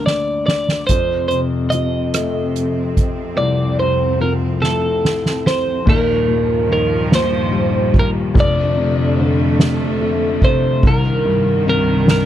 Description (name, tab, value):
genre	six-eight pop ballad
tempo	48 BPM (dotted quarters)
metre	6/8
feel	straight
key	unclear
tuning	A4 = 438 Hz
part	twelve-string electric guitar	melody	0.0-12.3 s	A4 to Eb5	-19 LUFS	right 2 dB	none
part	felt-muted upright piano	accompaniment	0.0-12.3 s	Eb1 to D4	-19 LUFS	left 4 dB	none
part	soft-mallet drum kit	drums	0.1-12.3 s	crash cymbal, hi-hat, kick drum, ride cymbal, rim click, snare drum	-18 LUFS	right 1 dB	none
part	warm studio string section	sustained chords	0.9-12.3 s	C2 to C4	-22 LUFS	right 3 dB	stereo widening
room	small room ambience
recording	dry, close 1970s-style studio recording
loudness	-14 LUFS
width	side -11 dB against mid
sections	0.0-5.9 A section; 5.9-12.3 B section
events	drum fill 0.0-0.9, 4.6-5.9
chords	0.0 Gm; 0.9 F; 5.9 Ebadd9; 8.4 F6; 10.8 Cm